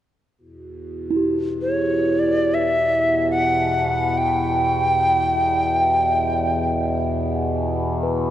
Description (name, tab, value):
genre	world meditative, free-time meditation music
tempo	free time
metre	none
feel	none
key	E dorian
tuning	A4 = 439 Hz
part	overtone-sweeping drone	drone	0.6-8.3 s	E2 to B2	-24 LUFS	equal	chorus, built-in reverb
part	bronze singing bowl	texture	1.1-8.3 s	E4 to B4	-24 LUFS	equal	none
part	breathy bright Native American-style cedar flute	melody	1.6-7.0 s	C#5 to G5	-20 LUFS	equal	ping-pong delay
room	wet cathedral reverb, RT60 4.5 s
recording	worn, warbling old tape, cassette tape, warbly pitch drift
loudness	-18 LUFS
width	side -11 dB against mid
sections	0.4-8.3 A section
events	none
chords	none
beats	free time